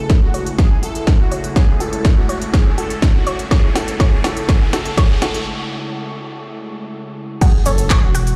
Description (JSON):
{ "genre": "melodic techno", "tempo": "123 BPM", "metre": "4/4", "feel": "straight", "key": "F# minor", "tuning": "A4 = 440 Hz", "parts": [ { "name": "soft supersaw", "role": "melody", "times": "0.0-8.3 s", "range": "F#4 to A4", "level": "-29 LUFS", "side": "equal", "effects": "vintage 12-bit sampler grit, sidechain pumping, dub echo" }, { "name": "evolving wavetable pad", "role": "sustained chords", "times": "0.0-7.4 s", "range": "C#3 to E4", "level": "-30 LUFS", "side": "equal", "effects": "chorus, built-in reverb, sidechain pumping" }, { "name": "dark detuned saw bass", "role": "bass", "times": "0.0-8.3 s", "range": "E1 to C#2", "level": "-28 LUFS", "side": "equal", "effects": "none" }, { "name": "riser and impact", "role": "sound effects", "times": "0.0-8.4 s", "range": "none", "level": "-32 LUFS", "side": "equal", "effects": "none" }, { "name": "analog pluck", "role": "arpeggios", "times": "0.1-8.2 s", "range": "C#4 to C#6", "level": "-30 LUFS", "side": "equal", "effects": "chorus, sidechain pumping, delay" }, { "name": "electronic kick drum", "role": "drums", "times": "0.1-8.0 s", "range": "none", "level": "-16 LUFS", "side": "equal", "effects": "none" }, { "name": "techno drum kit", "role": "drums", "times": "0.1-8.4 s", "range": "crash cymbal, handclaps, hi-hat, snare drum", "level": "-27 LUFS", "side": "equal", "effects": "none" }, { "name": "cabasa", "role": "percussion", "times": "7.4-8.4 s", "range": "none", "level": "-33 LUFS", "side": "equal", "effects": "none" } ], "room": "light reverb, digital ambience", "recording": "played on a big sound system in a bare room, large studio reverb", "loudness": "-16 LUFS", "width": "mono", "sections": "0.0-7.4 A section", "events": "build-up 0.0-7.4; drum fill 0.0-5.5; riser 0.0-5.5; filter sweep on synth arpeggio sound 0.0-7.4; break 5.5-7.4; impact 7.4-8.4", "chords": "0.0 F#madd9; 7.4 F#m" }